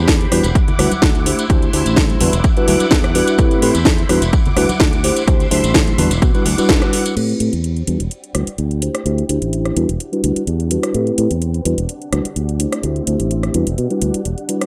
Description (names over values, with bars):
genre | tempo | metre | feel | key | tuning
filtered disco house | 127 BPM | 4/4 | swing 53% on 16ths | E minor | A4 = 441 Hz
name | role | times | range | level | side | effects
string machine, full ensemble | sustained chords | 0.0-14.7 s | C4 to D6 | -29 LUFS | equal | ensemble chorus, sidechain pumping, low-pass filter
modern bright fingered electric bass | bass | 0.0-14.3 s | E1 to B2 | -21 LUFS | equal | tube saturation, sidechain pumping, low-pass filter
electronic kick drum | drums | 0.1-6.8 s | none | -18 LUFS | equal | overdrive
house drum kit | drums | 0.1-14.7 s | crash cymbal, hi-hat, rim click, snare drum | -22 LUFS | equal | overdrive, sidechain pumping on hats, sidechain pumping on cymbals
tambourine and congas | percussion | 0.1-7.1 s | none | -28 LUFS | equal | sidechain pumping on perc, low-pass filter on perc
mellow tine electric piano | accompaniment | 0.3-14.7 s | G3 to C5 | -21 LUFS | equal | phaser, sidechain pumping, low-pass filter
room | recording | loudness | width
little or no reverb | dry, gritty hardware recording | -16 LUFS | mono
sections
0.0-7.2 A section; 7.2-14.7 B section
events
band accent 6.7; filter sweep 7.2-14.7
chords
0.3 Em9; 1.3 D9sus4; 2.2 Em9; 3.4 Am9; 4.1 Em9; 5.0 D9sus4; 6.0 Em9; 7.2 Am9; 7.9 Em9; 8.8 D9sus4; 9.8 Em9; 10.9 Am9; 11.7 Em9; 12.6 D9sus4; 13.5 Em9